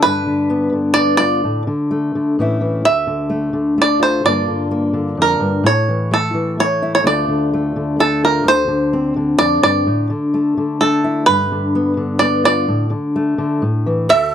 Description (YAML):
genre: acoustic folk duo or small band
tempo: 128 BPM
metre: 3/4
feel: straight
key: D minor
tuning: A4 = 440 Hz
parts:
  - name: bluegrass banjo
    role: melody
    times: 0.0-14.3 s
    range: A4 to E5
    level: -15 LUFS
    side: right 2 dB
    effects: none
  - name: fingerpicked steel-string acoustic guitar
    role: accompaniment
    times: 0.0-14.3 s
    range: D2 to F4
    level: -17 LUFS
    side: left 2 dB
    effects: none
  - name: sitar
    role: second line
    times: 14.1-14.3 s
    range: A4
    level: -20 LUFS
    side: right 4 dB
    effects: none
room: light reverb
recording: none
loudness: -14 LUFS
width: side -9 dB against mid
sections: 0.0-8.5 A section; 8.5-14.3 A section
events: none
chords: 0.0 G7; 1.4 Asus4; 2.4 A; 2.8 Dm; 4.2 Gm7; 5.6 A; 7.0 Dm; 8.5 Dm7; 9.9 Asus4; 11.3 G7; 12.7 Asus4; 13.6 A5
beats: | 0.03 0.50 0.96 | 1.43 1.90 2.37 | 2.84 3.30 3.77 | 4.24 4.71 5.18 | 5.64 6.11 6.58 | 7.05 7.52 7.99 | 8.46 8.93 9.39 | 9.86 10.33 10.80 | 11.27 11.74 12.21 | 12.68 13.15 13.62 | 14.09